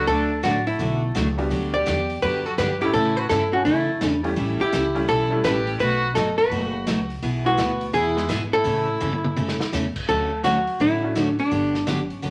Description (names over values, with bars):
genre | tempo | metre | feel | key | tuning
country, western swing | 168 BPM | 4/4 | swing 65% on 8ths | D major | A4 = 440 Hz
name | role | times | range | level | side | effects
archtop guitar, miked and amplified | melody | 0.0-12.3 s | D4 to D5 | -25 LUFS | equal | none
dark fiddle | second line | 0.0-9.7 s | A3 to G4 | -31 LUFS | equal | none
bright upright piano | accompaniment | 0.0-11.5 s | E3 to B4 | -31 LUFS | equal | none
upright bass | bass | 0.0-12.3 s | F#1 to A2 | -31 LUFS | equal | none
picked steel-string acoustic guitar | accompaniment | 0.1-12.3 s | B2 to A4 | -30 LUFS | equal | none
vintage drum kit | drums | 0.1-12.3 s | crash cymbal, hi-hat, kick drum, snare drum, toms | -34 LUFS | equal | none
room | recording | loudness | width
moderate studio reverb, RT60 0.9 s | vinyl crackle | -22 LUFS | mono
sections
0.0-10.1 A section; 10.1-12.3 B section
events
drum fill 9.0-9.7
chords
0.1 D; 1.5 Gmaj7; 2.9 A; 4.4 A7; 5.8 B7; 7.2 E/B; 8.7 A; 10.1 Dmaj7; 11.5 Gmaj7